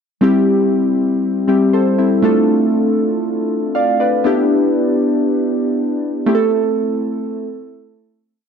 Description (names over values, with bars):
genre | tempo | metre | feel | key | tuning
pop | 119 BPM | 4/4 | straight | C major | A4 = 443 Hz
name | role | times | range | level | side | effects
glassy digital keys | solo | 0.2-8.3 s | G3 to F5 | -14 LUFS | equal | chorus
room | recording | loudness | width
little or no reverb | dry, close 1970s-style studio recording | -14 LUFS | side -7 dB against mid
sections
0.2-8.3 verse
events
fade-out 6.3-8.3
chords
0.2 C; 2.2 Dm; 4.3 Em7; 6.3 Am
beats
| 0.22 0.72 1.23 1.73 | 2.24 2.74 3.25 3.75 | 4.25 4.76 5.26 5.77 | 6.27 6.77 7.28 7.78